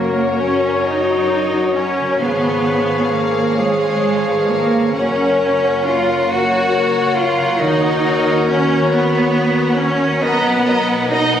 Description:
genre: classical, slow romantic movement for symphony orchestra.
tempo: 45 BPM (dotted quarters).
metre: 6/8.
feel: uneven beats, rubato.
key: F# major.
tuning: A4 = 439 Hz.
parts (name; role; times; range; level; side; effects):
rich studio violin section; melody; 0.0-11.4 s; C#5 to A#5; -27 LUFS; left 1 dB; none.
dark clarinet; second line; 0.0-11.3 s; F#4 to A#4; -24 LUFS; equal; none.
rich studio violin section; second line; 0.0-11.4 s; G#4 to D#5; -27 LUFS; equal; none.
silver concert flute; second line; 0.0-11.4 s; G#4 to F#5; -26 LUFS; equal; none.
warm cor anglais; second line; 0.0-11.3 s; C#5 to D#5; -25 LUFS; equal; none.
mellow bassoon; accompaniment; 0.0-11.3 s; E#3 to F#3; -27 LUFS; right 2 dB; none.
rich studio viola section; accompaniment; 0.0-11.4 s; G#3 to F#4; -24 LUFS; left 1 dB; none.
mellow French horn section; sustained chords; 0.0-11.4 s; F#4 to E#5; -22 LUFS; left 4 dB; none.
concert harp; arpeggios; 0.0-11.4 s; F#2 to D#5; -26 LUFS; left 6 dB; none.
bright chamber cello section; bass; 0.0-11.4 s; G#3 to F#4; -20 LUFS; right 2 dB; none.
warm studio double bass section; bass; 0.0-11.4 s; F#1 to F#2; -25 LUFS; right 2 dB; none.
timpani; percussion; 0.0-0.8 s; none; barely audible; none; none.
room: moderate scoring stage reverb, RT60 1.6 s.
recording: recorded on a phone in the room, studio reverb, compression.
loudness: -14 LUFS.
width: side -9 dB against mid.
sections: 0.0-11.4 A section.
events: none.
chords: 0.0 F#; 2.2 C#7/G#; 5.0 F#; 7.6 D#m7; 10.2 Bmaj7.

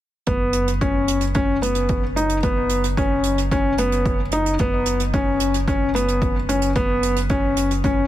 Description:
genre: piano and strings electronica.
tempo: 111 BPM.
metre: 4/4.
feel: straight.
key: unclear.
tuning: A4 = 440 Hz.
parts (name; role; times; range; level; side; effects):
felt-muted upright piano; riff; 0.3-8.0 s; B3 to D#4; -20 LUFS; left 1 dB; ping-pong delay.
round analog bass; bass; 0.3-8.1 s; F#1; -25 LUFS; equal; tube saturation, sidechain pumping.
electronic kick drum; drums; 0.3-8.0 s; none; -24 LUFS; equal; none.
hi-hat; drums; 0.3-7.9 s; none; -30 LUFS; right 7 dB; none.
room: light reverb, small room ambience.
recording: none.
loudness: -18 LUFS.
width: side -13 dB against mid.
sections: 0.3-8.1 A section.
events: none.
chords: 0.3 F#sus4; 4.6 F#5.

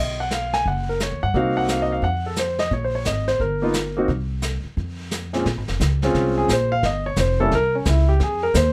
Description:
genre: jazz piano trio.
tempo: 175 BPM.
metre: 4/4.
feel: swing 64% on 8ths.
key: Bb minor.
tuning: A4 = 439 Hz.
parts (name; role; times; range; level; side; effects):
clear concert grand piano; melody; 0.0-8.7 s; Bb2 to Ab5; -24 LUFS; equal; none.
upright bass; bass; 0.0-8.7 s; F1 to G2; -26 LUFS; equal; none.
vintage brush drum kit; drums; 0.3-8.7 s; brushed snare drum, hi-hat, kick drum, snare drum; -30 LUFS; equal; none.
room: light reverb.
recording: none.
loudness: -22 LUFS.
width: mono.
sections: 0.0-5.5 A section; 5.5-8.7 B section.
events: grand piano solo 5.5-8.7.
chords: 0.0 B5; 1.3 Cm7b5; 2.0 F5; 2.7 Abadd9; 3.4 Gm(b13); 4.1 N.C.; 4.8 Bbm7; 6.8 G7(b5, no3); 7.5 C7b9; 8.2 Fm7.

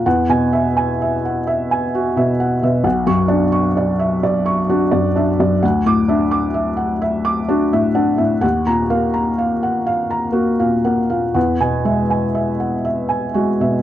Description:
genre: neoclassical minimalist piano.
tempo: 42 BPM (dotted quarters).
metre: 6/8.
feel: uneven beats, rubato.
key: unclear.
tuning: A4 = 441 Hz.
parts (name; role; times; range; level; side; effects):
felt-muted upright piano; solo; 0.0-13.8 s; B1 to D6; -15 LUFS; equal; none.
room: light reverb.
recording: dry, close 1970s-style studio recording.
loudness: -15 LUFS.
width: side -12 dB against mid.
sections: 0.0-13.8 A section.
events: none.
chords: 0.1 Eadd9; 2.8 Bmadd9; 5.6 Dadd9; 8.4 D#madd9; 11.4 Eadd9.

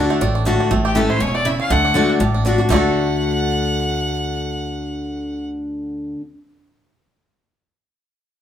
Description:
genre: bluegrass.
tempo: 241 BPM.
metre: 4/4.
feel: swing 55% on 8ths.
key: D major.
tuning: A4 = 437 Hz.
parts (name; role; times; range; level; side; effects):
bluegrass banjo; melody; 0.0-6.2 s; A3 to A4; -24 LUFS; right 6 dB; none.
picked steel-string acoustic guitar; accompaniment; 0.0-6.2 s; A2 to F#4; -19 LUFS; left 2 dB; none.
upright bass; bass; 0.0-6.1 s; E1 to D2; -24 LUFS; right 1 dB; none.
clear fiddle; melody; 0.9-5.5 s; G4 to F#5; -23 LUFS; left 1 dB; none.
room: wet large studio reverb, RT60 0.9 s.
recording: band playing live in one room.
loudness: -17 LUFS.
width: side -10 dB against mid.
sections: 0.7-2.7 A section; 2.7-4.7 B section.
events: none.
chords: 0.0 D; 0.7 A; 1.7 D.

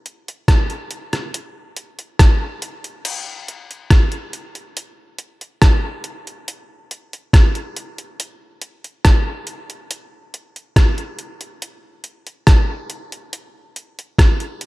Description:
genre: reggae.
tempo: 70 BPM.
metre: 4/4.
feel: straight.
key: none.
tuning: none.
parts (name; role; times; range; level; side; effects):
detuned 8-bit digital drum machine; drums; 0.1-14.7 s; crash cymbal, hi-hat, kick drum, rim click; -14 LUFS; equal; gated reverb.
room: digital ambience.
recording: none.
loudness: -14 LUFS.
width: side -20 dB against mid.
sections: 0.0-3.0 A section; 3.0-14.7 B section.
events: none.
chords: none.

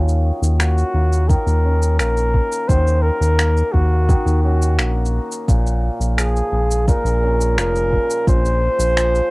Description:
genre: folktronica.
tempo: 86 BPM.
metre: 4/4.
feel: straight.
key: Eb dorian.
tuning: A4 = 440 Hz.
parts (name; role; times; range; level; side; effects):
hammered dulcimer; arpeggios; 0.0-9.3 s; Bb2 to Gb4; -26 LUFS; left 1 dB; low-pass filter, cassette tape, plate reverb, tape echo.
round analog bass; bass; 0.0-9.2 s; F1 to Eb2; -17 LUFS; equal; tube saturation.
electronic shaker and finger snaps; drums; 0.1-9.3 s; none; -24 LUFS; equal; cassette tape.
mellow flugelhorn; melody; 0.6-9.3 s; Gb4 to C5; -21 LUFS; equal; cassette tape.
electronic kick drum; drums; 1.3-8.4 s; none; -17 LUFS; equal; cassette tape.
room: light reverb.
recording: home recording on cassette.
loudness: -15 LUFS.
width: side -23 dB against mid.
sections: 0.0-9.3 A section.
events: filter sweep on hammered dulcimer 0.0-9.3.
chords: 0.0 Ebm7; 5.5 Bbm7.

